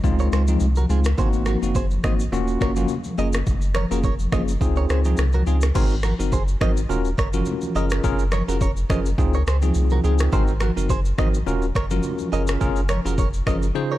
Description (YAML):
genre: afrobeats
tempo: 105 BPM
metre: 4/4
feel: swing 55% on 16ths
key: unclear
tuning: A4 = 440 Hz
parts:
  - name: bell-like tine electric piano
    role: accompaniment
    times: 0.0-13.9 s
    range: Db3 to C5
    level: -26 LUFS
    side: left 1 dB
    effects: medium stereo tremolo
  - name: warm sub bass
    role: bass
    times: 0.0-13.7 s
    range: Eb1 to Db2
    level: -22 LUFS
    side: equal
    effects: none
  - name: afro-pop drum kit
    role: drums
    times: 0.0-13.7 s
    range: crash cymbal, finger snaps, kick drum, rim click, shaker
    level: -24 LUFS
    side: equal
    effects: overdrive
  - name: congas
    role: percussion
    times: 0.0-13.6 s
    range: none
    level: -31 LUFS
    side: left 1 dB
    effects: none
  - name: direct-recorded clean electric guitar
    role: riff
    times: 0.2-14.0 s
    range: F4 to Eb5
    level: -31 LUFS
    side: right 6 dB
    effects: wide subtle chorus, tape echo
room: little or no reverb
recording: dark, warm production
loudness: -19 LUFS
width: side -15 dB against mid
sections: 0.0-5.8 A section; 5.8-14.0 B section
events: none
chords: 0.0 Dbmaj7; 1.2 Ab7; 2.3 Ebm7; 3.2 Gbmaj7; 4.6 Dbmaj7; 5.8 Ab7; 6.9 Ebm7; 7.8 Gbmaj7; 9.2 Dbmaj7; 10.3 Ab7; 11.5 Ebm7; 12.3 Gbmaj7